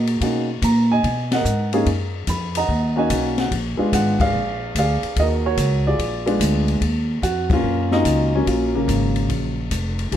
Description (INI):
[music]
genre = jazz piano trio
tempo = 145 BPM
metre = 4/4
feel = swing 66% on 8ths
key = Eb minor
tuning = A4 = 440 Hz
[part]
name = warm upright piano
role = melody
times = 0.0-10.2 s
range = Db3 to B5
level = -21 LUFS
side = right 1 dB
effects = plate reverb
[part]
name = upright bass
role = bass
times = 0.0-10.2 s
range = F1 to B2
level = -21 LUFS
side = equal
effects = none
[part]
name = open jazz drum kit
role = drums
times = 0.1-10.2 s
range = hi-hat, kick drum, ride cymbal, snare drum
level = -26 LUFS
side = left 3 dB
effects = none
[sound]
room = moderate studio reverb, RT60 0.8 s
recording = dark, warm production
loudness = -18 LUFS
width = side -10 dB against mid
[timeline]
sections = 0.0-6.8 A section; 6.8-10.2 A section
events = band accent 1.2, 4.1, 7.4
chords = 0.2 Bmaj7; 3.5 Bb7b9; 5.2 Ebm7; 6.0 Bb7b9; 6.8 Ebm7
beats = | 0.21 0.63 1.04 1.45 | 1.86 2.28 2.69 3.10 | 3.52 3.93 4.34 4.75 | 5.17 5.58 5.99 6.41 | 6.82 7.23 7.64 8.06 | 8.47 8.88 9.30 9.71 | 10.12